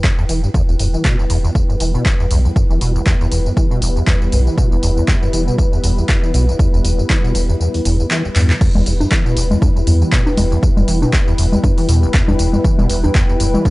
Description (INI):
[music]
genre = acid house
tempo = 119 BPM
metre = 4/4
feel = swing 56% on 16ths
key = E minor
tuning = A4 = 438 Hz
[part]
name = deep acid bass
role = riff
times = 0.0-13.7 s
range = E1 to E3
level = -19 LUFS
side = equal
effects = overdrive, ensemble chorus, analog delay
[part]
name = electronic kick drum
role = drums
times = 0.0-13.7 s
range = none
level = -15 LUFS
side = equal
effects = none
[part]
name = punchy analog drum machine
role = drums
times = 0.0-13.7 s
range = congas, crash cymbal, handclaps, hi-hat, tambourine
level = -21 LUFS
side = left 1 dB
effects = overdrive
[part]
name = warbly tape-like pad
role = texture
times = 0.0-13.7 s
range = E4 to G5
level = -27 LUFS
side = left 2 dB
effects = chorus, built-in reverb, sidechain pumping
[part]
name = saturated sub bass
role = bass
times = 0.3-13.6 s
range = E1 to E2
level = -16 LUFS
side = equal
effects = sidechain pumping
[part]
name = warm analog pad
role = sustained chords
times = 1.2-13.7 s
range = G3 to B4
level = -24 LUFS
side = equal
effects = chorus, sidechain pumping
[sound]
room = little or no reverb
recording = dry, gritty hardware recording, nothing above 10.6 kHz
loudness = -13 LUFS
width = side -20 dB against mid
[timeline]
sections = 0.0-8.6 A section; 8.6-13.7 B section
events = kick drops out 7.6-8.6; drum fill 8.4; drop 8.6-13.7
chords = 0.0 Em